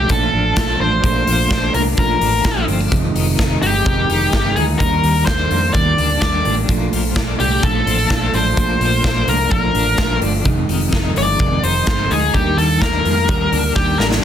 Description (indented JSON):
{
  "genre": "jangly indie pop",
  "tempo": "127 BPM",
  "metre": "4/4",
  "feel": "straight",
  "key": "Bb major",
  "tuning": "A4 = 440 Hz",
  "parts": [
    { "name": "smooth overdriven lead guitar", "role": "melody", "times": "0.0-14.1 s", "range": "G4 to D5", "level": "-18 LUFS", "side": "left 2 dB", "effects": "none" },
    { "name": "mellow electric guitar", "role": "accompaniment", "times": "0.0-14.2 s", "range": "F2 to Eb4", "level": "-22 LUFS", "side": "right 6 dB", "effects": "spring reverb" },
    { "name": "twelve-string electric guitar", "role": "arpeggios", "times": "0.0-14.2 s", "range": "F2 to Eb4", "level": "-24 LUFS", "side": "left 6 dB", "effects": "tremolo, slapback echo" },
    { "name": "vintage muted fingered electric bass", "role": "bass", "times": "0.0-14.2 s", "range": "F1 to F2", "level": "-21 LUFS", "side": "equal", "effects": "none" },
    { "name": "big rock drum kit", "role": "drums", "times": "0.1-14.2 s", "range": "hi-hat, kick drum, snare drum", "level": "-19 LUFS", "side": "equal", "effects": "none" }
  ],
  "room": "light reverb",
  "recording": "dense, heavily limited modern master",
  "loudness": "-14 LUFS",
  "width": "side -9 dB against mid",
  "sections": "0.0-14.2 A section",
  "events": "drum fill 13.8-14.2",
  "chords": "0.0 Bbmaj7; 2.9 Fm7; 4.8 Ebmaj7; 6.7 Bbmaj7; 10.5 Fm7; 12.3 Ebmaj7"
}